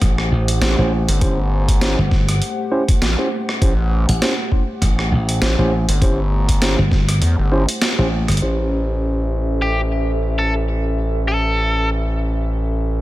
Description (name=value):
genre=glitch hop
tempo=100 BPM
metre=4/4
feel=swing 56% on 16ths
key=A dorian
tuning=A4 = 443 Hz
part: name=dark analog pad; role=sustained chords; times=0.0-13.0 s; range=A3 to B#5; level=-28 LUFS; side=equal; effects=chorus, sidechain pumping
part: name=slap bass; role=bass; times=0.0-8.4 s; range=G1 to A1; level=-17 LUFS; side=equal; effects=none
part: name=boom bap sampler-style drum kit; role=drums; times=0.0-8.4 s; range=hi-hat, rim click, snare drum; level=-22 LUFS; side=equal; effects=none
part: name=electronic kick drum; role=drums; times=0.0-7.1 s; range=none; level=-16 LUFS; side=equal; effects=none
part: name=mellow tine electric piano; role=stabs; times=0.6-13.0 s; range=C#4 to B#4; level=-24 LUFS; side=equal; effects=sidechain pumping, low-pass filter, digital delay
part: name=gritty driven synth bass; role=bass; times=0.6-13.0 s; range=G1 to E2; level=-19 LUFS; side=equal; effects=distortion
part: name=warbly tape-like pad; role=texture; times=9.1-13.0 s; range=A4 to E5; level=-28 LUFS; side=right 1 dB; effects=chorus, built-in reverb, sidechain pumping
part: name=biting lead guitar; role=melody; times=9.6-11.9 s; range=G4 to A4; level=-23 LUFS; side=equal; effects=overdrive, digital delay
room=digital ambience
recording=none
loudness=-16 LUFS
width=side -16 dB against mid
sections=0.0-8.4 A section; 8.4-13.0 B section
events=kick drops out 7.2-8.4; band accent 7.8-8.1; filter sweep on tine electric piano 8.4-13.0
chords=0.0 A7#9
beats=0.02 0.62 | 1.22 1.82 2.42 3.02 | 3.62 4.22 4.82 5.42 | 6.02 6.62 7.22 7.82 | 8.42 9.02 9.62 10.22 | 10.82 11.42 12.02 12.62